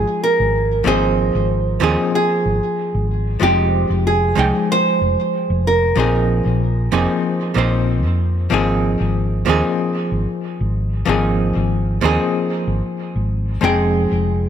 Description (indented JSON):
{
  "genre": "sunset chillout",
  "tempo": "94 BPM",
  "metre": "4/4",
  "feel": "straight",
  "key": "Ab major",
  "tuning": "A4 = 440 Hz",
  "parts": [
    { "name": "nylon-string guitar", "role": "melody", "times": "0.0-6.9, 13.6-14.5 s", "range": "G4 to C5", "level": "-19 LUFS", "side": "right 2 dB", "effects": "tape echo" },
    { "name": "archtop guitar, miked and amplified", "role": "accompaniment", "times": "0.0-14.5 s", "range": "F3 to G5", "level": "-19 LUFS", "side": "left 1 dB", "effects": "auto-pan, tape echo" },
    { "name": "hollow-body short-scale fingered electric bass", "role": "bass", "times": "0.0-14.5 s", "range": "F1 to F2", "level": "-19 LUFS", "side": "equal", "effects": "none" }
  ],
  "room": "light reverb, small room ambience",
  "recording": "none",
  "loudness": "-15 LUFS",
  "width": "side -9 dB against mid",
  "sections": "0.0-14.5 A section",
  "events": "none",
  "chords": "0.0 Ab69; 3.4 Fm9; 6.0 Bb9sus4; 8.5 Ab69; 13.6 Fm9",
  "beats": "0.23 | 0.86 1.50 2.14 2.78 | 3.42 4.05 4.69 5.33 | 5.97 6.61 7.25 7.88 | 8.52 9.16 9.80 10.44 | 11.08 11.71 12.35 12.99 | 13.63 14.27"
}